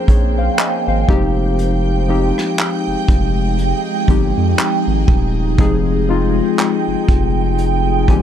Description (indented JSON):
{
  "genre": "contemporary R&B",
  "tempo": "60 BPM",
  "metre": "4/4",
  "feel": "swing 58% on 16ths",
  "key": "unclear",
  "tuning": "A4 = 440 Hz",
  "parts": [
    { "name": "warm analog keys", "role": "accompaniment", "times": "0.0-8.2 s", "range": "F3 to Ab5", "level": "-19 LUFS", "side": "left 4 dB", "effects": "chorus" },
    { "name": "ethereal airy pad", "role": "sustained chords", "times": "0.0-8.2 s", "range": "Ab3 to G5", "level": "-21 LUFS", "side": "right 2 dB", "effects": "ensemble chorus, built-in reverb, phaser" },
    { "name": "saturated sub bass", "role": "bass", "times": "0.1-8.2 s", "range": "Eb1 to F2", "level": "-18 LUFS", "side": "equal", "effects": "none" },
    { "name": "vintage brush drum kit", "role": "drums", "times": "0.1-8.2 s", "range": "handclaps, hi-hat, kick drum, rim click", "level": "-15 LUFS", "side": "equal", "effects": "none" }
  ],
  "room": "light reverb",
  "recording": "dark, warm production",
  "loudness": "-13 LUFS",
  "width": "side -10 dB against mid",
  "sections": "0.0-8.2 A section",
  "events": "synth keys fill 7.6-8.2",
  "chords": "0.0 Bbm9; 1.1 Fm9",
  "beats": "0.59 | 1.59 2.59 3.59 4.59 | 5.59 6.59 7.59"
}